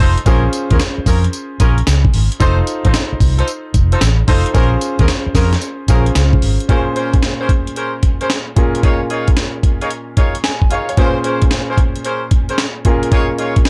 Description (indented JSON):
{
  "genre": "R&B, new jack swing",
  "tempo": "112 BPM",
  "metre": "4/4",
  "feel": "swing 66% on 16ths",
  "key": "Bb minor",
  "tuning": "A4 = 441 Hz",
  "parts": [
    { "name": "clear concert grand piano", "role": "accompaniment", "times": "0.0-13.7 s", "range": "Bb2 to Ab5", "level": "-24 LUFS", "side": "equal", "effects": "none" },
    { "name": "clear horn section", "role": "stabs", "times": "0.0-13.6 s", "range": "Bb3 to Db5", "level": "-24 LUFS", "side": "equal", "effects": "delay" },
    { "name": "vintage muted fingered electric bass", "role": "bass", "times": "0.0-6.6 s", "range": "F1 to F2", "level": "-16 LUFS", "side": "equal", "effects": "none" },
    { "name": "breakbeat sampler-style drum kit", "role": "drums", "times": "0.0-13.7 s", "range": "hi-hat, kick drum, snare drum, tambourine", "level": "-17 LUFS", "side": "equal", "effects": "vintage 12-bit sampler grit" }
  ],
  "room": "little or no reverb",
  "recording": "dark, warm production",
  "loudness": "-15 LUFS",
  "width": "mono",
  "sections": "0.0-6.7 A section; 6.7-13.7 B section",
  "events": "none",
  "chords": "0.3 Bbm7; 2.4 F7; 4.5 Bbm7; 6.7 Bbm9; 8.6 Eb9sus4/Bb; 11.0 Bbm9; 12.8 Eb9sus4/Bb",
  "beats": "| 0.26 0.80 1.33 1.87 | 2.40 2.94 3.48 4.01 | 4.55 5.08 5.62 6.15 | 6.69 7.22 7.76 8.30 | 8.83 9.37 9.90 10.44 | 10.97 11.51 12.05 12.58 | 13.12 13.65"
}